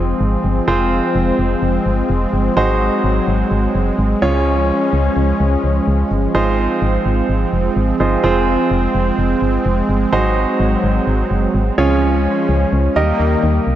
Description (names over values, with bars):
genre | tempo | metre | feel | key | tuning
pop | 127 BPM | 4/4 | straight | Ab major | A4 = 437 Hz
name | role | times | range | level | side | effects
bright grand piano | accompaniment | 0.0-13.8 s | C4 to Eb5 | -19 LUFS | right 2 dB | none
brassy analog pad | sustained chords | 0.0-13.8 s | Eb3 to Db4 | -18 LUFS | right 1 dB | chorus
solid FM bass | bass | 0.0-13.8 s | F1 to Eb2 | -18 LUFS | equal | none
room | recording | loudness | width
moderate lush hall reverb, RT60 2.6 s | dark, warm production, nothing above 7.8 kHz | -14 LUFS | side -12 dB against mid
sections
0.0-13.8 A section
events
none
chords
0.0 Ab6; 0.7 Fm; 2.6 Ab7; 4.2 Db; 6.3 Ab6; 8.2 Fm; 10.1 Ab7; 11.8 Db; 13.0 Eb